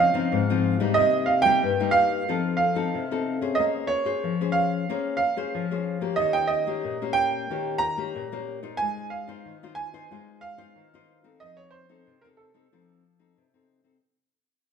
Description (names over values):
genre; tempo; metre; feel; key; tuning
samba; 92 BPM; 4/4; straight; unclear; A4 = 440 Hz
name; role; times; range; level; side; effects
clear baby grand piano; melody; 0.0-13.6 s; A4 to Bb5; -24 LUFS; right 5 dB; none
nylon-string guitar; accompaniment; 0.0-14.0 s; G2 to C5; -27 LUFS; left 6 dB; none
room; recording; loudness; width
wet large studio reverb, RT60 1.2 s; minimal, uncompressed stereo recording; -22 LUFS; side -6 dB against mid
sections
0.0-14.0 A section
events
fade-out 0.0-14.0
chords
0.0 Dbmaj9; 1.0 Cm7; 2.3 F7; 3.6 Bbm9; 6.2 Eb7; 8.8 Ab6; 11.4 F7